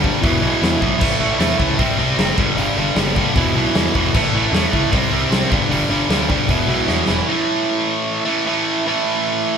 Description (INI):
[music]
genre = punk rock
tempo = 153 BPM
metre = 4/4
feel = straight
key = unclear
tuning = A4 = 440 Hz
[part]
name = distorted electric guitar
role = riff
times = 0.0-9.6 s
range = E2 to C4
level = -17 LUFS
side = right 1 dB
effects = overdrive
[part]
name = fuzz picked electric bass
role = bass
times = 0.0-7.2 s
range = E1 to E2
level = -23 LUFS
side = equal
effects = overdrive
[part]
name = big rock drum kit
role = drums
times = 0.0-7.2 s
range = crash cymbal, hi-hat, kick drum, snare drum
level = -20 LUFS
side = left 1 dB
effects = none
[sound]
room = light reverb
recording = band playing live in one room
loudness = -15 LUFS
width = side -7 dB against mid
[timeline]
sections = 0.0-7.3 A section; 7.3-9.6 B section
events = drum fill 6.9-7.3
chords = 0.2 E5; 1.0 A; 1.8 C5; 2.4 G5; 3.4 E5; 4.1 A; 4.9 C5; 5.5 G5; 6.5 E5; 7.3 A5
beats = 0.23 0.62 | 1.01 1.41 1.80 2.19 | 2.58 2.98 3.37 3.76 | 4.15 4.54 4.93 5.32 | 5.71 6.11 6.50 6.89 | 7.28 7.67 8.06 8.46 | 8.85 9.24